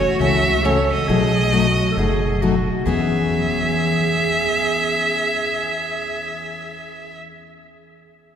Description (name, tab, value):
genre	acoustic string swing (jazz manouche)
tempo	135 BPM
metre	4/4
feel	swing 64% on 8ths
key	E major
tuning	A4 = 441 Hz
part	bright violin	melody	0.0-7.2 s	C#5 to E5	-21 LUFS	right 2 dB	none
part	bright clarinet	second line	0.0-7.2 s	F#4 to A4	-25 LUFS	right 2 dB	none
part	picked steel-string acoustic guitar	accompaniment	0.2-7.3 s	B2 to G#4	-22 LUFS	left 3 dB	none
part	upright bass	bass	0.2-7.2 s	F#1 to E2	-24 LUFS	equal	none
room	wet cathedral reverb, RT60 4.4 s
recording	recorded in a church or concert hall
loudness	-17 LUFS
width	side -8 dB against mid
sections	0.0-2.9 A section; 2.9-6.4 B section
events	none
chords	0.0 F#m7; 1.1 B7; 2.9 E6